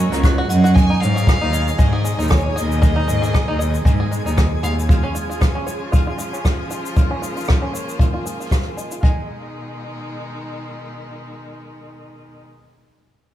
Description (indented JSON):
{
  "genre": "folktronica",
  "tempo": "116 BPM",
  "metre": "4/4",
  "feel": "swing 56% on 16ths",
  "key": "G# dorian",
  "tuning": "A4 = 440 Hz",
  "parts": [
    { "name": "rich violin", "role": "melody", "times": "0.0-4.7 s", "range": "C#5 to A#5", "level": "-27 LUFS", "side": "left 2 dB", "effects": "digital delay" },
    { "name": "vibraphone with hard mallets", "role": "second line", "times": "0.0-0.8 s", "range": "F#4 to D#5", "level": "-30 LUFS", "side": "right 2 dB", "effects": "vintage 12-bit sampler grit, digital delay" },
    { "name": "clear string quartet", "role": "sustained chords", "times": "0.0-12.5 s", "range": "B2 to F#4", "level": "-31 LUFS", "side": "left 1 dB", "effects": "none" },
    { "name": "bluegrass banjo", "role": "arpeggios", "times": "0.0-9.3 s", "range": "G#3 to E#5", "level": "-28 LUFS", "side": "equal", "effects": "low-pass filter, digital delay" },
    { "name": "warm cello", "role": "bass", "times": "0.0-4.9 s", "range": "C#2 to G#2", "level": "-18 LUFS", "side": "right 1 dB", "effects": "tube saturation" },
    { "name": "twinkling granular texture", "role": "texture", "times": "0.0-9.0 s", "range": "G#4 to C#6", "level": "-33 LUFS", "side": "right 1 dB", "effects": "built-in reverb" },
    { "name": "rim click and shaker", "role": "drums", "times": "0.1-9.0 s", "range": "none", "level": "-28 LUFS", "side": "equal", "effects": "none" },
    { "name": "kick drum", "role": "drums", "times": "0.2-9.2 s", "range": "none", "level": "-17 LUFS", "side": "equal", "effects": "none" }
  ],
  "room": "little or no reverb",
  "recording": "small room ambience",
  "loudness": "-16 LUFS",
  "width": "side -12 dB against mid",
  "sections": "0.8-9.0 A section; 9.0-13.2 B section",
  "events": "filter sweep on five-string banjo 0.8-9.0",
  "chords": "0.0 F#; 0.8 G#m; 4.9 C#; 9.0 G#m"
}